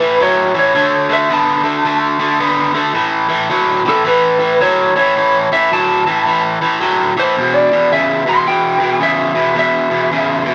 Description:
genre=blues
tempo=109 BPM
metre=4/4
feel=swing 63% on 8ths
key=A mixolydian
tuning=A4 = 440 Hz
part: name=lightly driven lead guitar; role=melody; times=0.0-10.5 s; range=A4 to C6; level=-17 LUFS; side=equal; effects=none
part: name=overdriven semi-hollow guitar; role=riff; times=0.0-10.5 s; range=E2 to B3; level=-16 LUFS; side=equal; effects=none
room=moderate studio reverb, RT60 0.7 s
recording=none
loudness=-14 LUFS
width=mono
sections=0.0-10.5 A section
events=none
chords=0.0 A5; 0.8 D5; 3.0 A5; 7.4 E5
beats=0.20 | 0.75 1.30 1.85 2.40 | 2.95 3.50 4.05 4.61 | 5.16 5.71 6.26 6.81 | 7.36 7.91 8.46 9.02 | 9.57 10.12

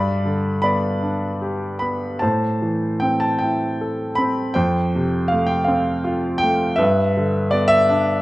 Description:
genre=classical, lyrical solo piano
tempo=74-83 BPM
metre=3/4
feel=rubato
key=unclear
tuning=A4 = 440 Hz
part: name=clear grand piano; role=solo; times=0.0-8.2 s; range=F2 to B5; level=-17 LUFS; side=equal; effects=none
room=light reverb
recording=close, detailed microphones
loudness=-18 LUFS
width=side -18 dB against mid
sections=0.0-8.2 A section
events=none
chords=0.0 G; 2.2 Am; 4.5 Fadd9; 6.8 G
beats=0.64 1.43 | 2.23 3.02 3.79 | 4.55 5.29 6.05 | 6.79 7.52

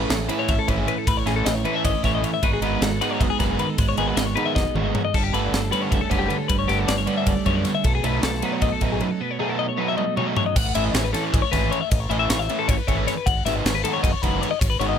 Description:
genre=math rock and midwest emo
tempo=310 BPM (eighths)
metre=7/8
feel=straight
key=A lydian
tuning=A4 = 439 Hz
part: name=twelve-string electric guitar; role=accompaniment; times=0.0-11.9 s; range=F#2 to G#4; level=-27 LUFS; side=right 8 dB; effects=none
part: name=twelve-string electric guitar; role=arpeggios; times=0.0-15.0 s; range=G4 to F#5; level=-25 LUFS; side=left 11 dB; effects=none
part: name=crunchy overdriven guitar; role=riff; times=0.0-15.0 s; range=B2 to E4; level=-26 LUFS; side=right 1 dB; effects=none
part: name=growling fingered electric bass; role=bass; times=0.0-15.0 s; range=F#1 to F#2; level=-26 LUFS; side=equal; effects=overdrive
part: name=crisp fusion drum kit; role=drums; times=0.1-14.9 s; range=crash cymbal, kick drum, ride cymbal, snare drum, toms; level=-25 LUFS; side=equal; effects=none
room=little or no reverb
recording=none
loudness=-20 LUFS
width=side -8 dB against mid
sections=0.0-10.6 A section; 10.6-15.0 B section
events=drum fill 4.6-5.1, 10.0-10.6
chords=0.0 Amaj9; 2.4 G#m7; 5.1 Gmaj9#11; 7.9 B7; 10.6 Amaj9; 13.3 G#m7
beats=0.10 0.30 0.49 0.68 0.88 | 1.07 1.27 1.46 1.65 1.85 2.04 2.24 | 2.43 2.62 2.82 3.01 3.20 3.40 3.59 | 3.79 3.98 4.17 4.37 4.56 4.75 4.95 | 5.14 5.33 5.53 5.72 5.92 6.11 6.30 | 6.50 6.69 6.88 7.08 7.27 7.46 7.66 | 7.85 8.04 8.24 8.43 8.63 8.82 9.01 | 9.21 9.40 9.59 9.79 9.98 10.17 10.37 | 10.56 10.75 10.95 11.14 11.33 11.53 11.72 | 11.91 12.10 12.30 12.49 12.68 12.88 13.07 | 13.26 13.45 13.65 13.84 14.03 14.22 14.42 | 14.61 14.80

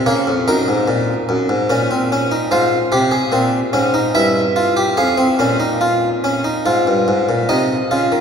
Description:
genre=classical, baroque-style 3-part fugue for harpsichord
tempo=72 BPM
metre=3/4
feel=straight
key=unclear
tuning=A4 = 439 Hz
part: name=harpsichord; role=solo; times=0.0-8.2 s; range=F2 to F5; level=-14 LUFS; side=equal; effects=none
room=wet cathedral reverb, RT60 5.2 s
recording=recorded in a church or concert hall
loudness=-14 LUFS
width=side -7 dB against mid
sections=0.0-7.5 A section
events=none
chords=0.1 Bbm; 2.5 Fm/Ab; 4.1 Em/G; 5.0 Fm; 7.5 Ab/C (rootless)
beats=| 0.06 0.87 1.68 | 2.50 3.33 4.15 | 4.98 5.82 6.66 | 7.50

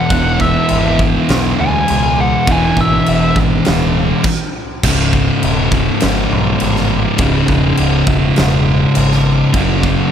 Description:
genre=stoner and doom metal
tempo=102 BPM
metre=4/4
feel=straight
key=C# minor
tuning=A4 = 437 Hz
part: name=fuzz lead guitar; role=melody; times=0.0-3.4 s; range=E5 to G#5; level=-18 LUFS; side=equal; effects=wah, distortion
part: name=thick fuzz guitar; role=riff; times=0.0-10.1 s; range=C#2 to F#3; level=-16 LUFS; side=left 7 dB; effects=distortion
part: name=thick fuzz guitar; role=riff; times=0.0-10.1 s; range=C#2 to F#3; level=-17 LUFS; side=right 8 dB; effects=distortion
part: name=growling picked electric bass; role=bass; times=0.1-10.0 s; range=C#1 to D2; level=-19 LUFS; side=equal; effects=overdrive
part: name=big rock drum kit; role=drums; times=0.1-10.0 s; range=crash cymbal, kick drum, snare drum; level=-18 LUFS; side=equal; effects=none
room=small room ambience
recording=none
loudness=-11 LUFS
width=side -8 dB against mid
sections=0.0-4.8 A section; 4.8-10.1 B section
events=lead electric guitar solo 0.0-4.8; stop 4.3-4.8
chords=0.0 E; 4.8 C#m; 9.6 F#5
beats=| 0.12 0.71 1.30 1.89 | 2.48 3.07 3.66 4.25 | 4.84 5.43 6.02 6.61 | 7.20 7.79 8.38 8.96 | 9.55

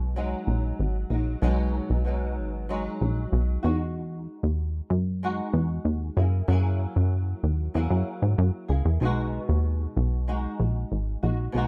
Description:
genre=indie pop, bedroom pop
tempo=95 BPM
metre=4/4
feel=straight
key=B major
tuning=A4 = 440 Hz
part: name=flamenco guitar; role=accompaniment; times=0.0-11.7 s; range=B2 to G#4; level=-35 LUFS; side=equal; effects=ensemble chorus, warbly pitch drift
part: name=plucky analog bass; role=bass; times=0.0-11.7 s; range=G#1 to G#2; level=-26 LUFS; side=equal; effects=none
room=little or no reverb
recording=rough home demo mix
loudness=-26 LUFS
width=mono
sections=0.0-11.7 A section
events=none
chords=0.0 B6; 3.6 Emaj9; 6.2 F#9; 9.0 B6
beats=0.17 0.80 | 1.43 2.06 2.70 3.33 | 3.96 4.59 5.23 5.86 | 6.49 7.12 7.76 8.39 | 9.02 9.65 10.28 10.91 | 11.55

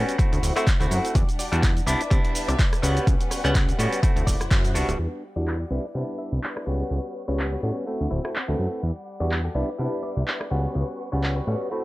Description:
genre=filtered disco house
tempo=125 BPM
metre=4/4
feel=swing 56% on 16ths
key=unclear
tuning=A4 = 440 Hz
part: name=bright clav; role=accompaniment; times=0.0-11.8 s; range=G3 to F#5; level=-28 LUFS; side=equal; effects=phaser, sidechain pumping, low-pass filter
part: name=warm studio violin section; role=sustained chords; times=0.0-11.8 s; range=G3 to E6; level=-36 LUFS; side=left 1 dB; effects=sidechain pumping, low-pass filter
part: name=plucky analog bass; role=bass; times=0.0-11.6 s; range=D1 to C3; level=-25 LUFS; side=equal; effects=sidechain pumping, low-pass filter
part: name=punchy analog drum machine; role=drums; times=0.1-11.3 s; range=crash cymbal, handclaps, hi-hat, rim click, shaker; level=-30 LUFS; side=right 1 dB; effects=low-pass filter on hats, low-pass filter on perc, low-pass filter on snare, low-pass filter on cymbals
part: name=direct-recorded clean electric guitar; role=riff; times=0.2-11.7 s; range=E4 to F#5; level=-36 LUFS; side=left 3 dB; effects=vintage 12-bit sampler grit, sidechain pumping, low-pass filter
part: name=electronic kick drum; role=drums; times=0.2-4.6 s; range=none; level=-21 LUFS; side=equal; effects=overdrive
room=little or no reverb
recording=dry, gritty hardware recording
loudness=-22 LUFS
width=side -18 dB against mid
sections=0.0-5.0 A section; 5.0-11.8 B section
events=clean electric guitar fill 0.4-1.2, 4.0-5.0; band accent 4.5; filter sweep on drum 5.0-11.8; filter sweep 5.0-11.8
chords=0.2 D9; 1.2 Em9; 1.9 Cmaj9; 2.8 A13/C#; 4.0 D9; 5.0 Em9; 5.7 Cmaj9; 6.7 A13/C#; 7.9 D9; 8.8 Em9; 9.6 Cmaj9; 10.5 A13/C#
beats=0.19 0.67 | 1.15 1.63 2.11 2.59 | 3.07 3.55 4.03 4.51 | 4.99 5.47 5.95 6.43 | 6.91 7.39 7.87 8.35 | 8.83 9.31 9.79 10.27 | 10.75 11.23 11.71

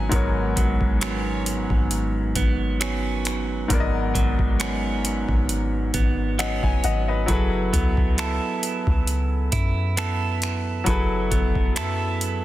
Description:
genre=contemporary R&B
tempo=67 BPM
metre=4/4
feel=swing 54% on 16ths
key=G# phrygian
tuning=A4 = 440 Hz
part: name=clear baby grand piano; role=accompaniment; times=0.0-12.4 s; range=G#2 to A#5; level=-28 LUFS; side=left 4 dB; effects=none
part: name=clean electric guitar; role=arpeggios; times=0.0-12.4 s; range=G#2 to A4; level=-28 LUFS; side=right 7 dB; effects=digital delay
part: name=soft 808-style bass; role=bass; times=0.0-12.4 s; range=F#1 to F#2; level=-26 LUFS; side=equal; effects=none
part: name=booming analog drum machine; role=drums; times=0.1-12.4 s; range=finger snaps, hi-hat, kick drum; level=-24 LUFS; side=equal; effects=overdrive, soft clipping on snare
room=little or no reverb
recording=dense, heavily limited modern master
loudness=-20 LUFS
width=side -14 dB against mid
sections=0.0-12.4 A section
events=none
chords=0.0 G#m11; 7.3 F#m11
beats=| 0.12 1.01 1.91 2.81 | 3.70 4.60 5.49 6.39 | 7.28 8.18 9.07 9.97 | 10.87 11.76

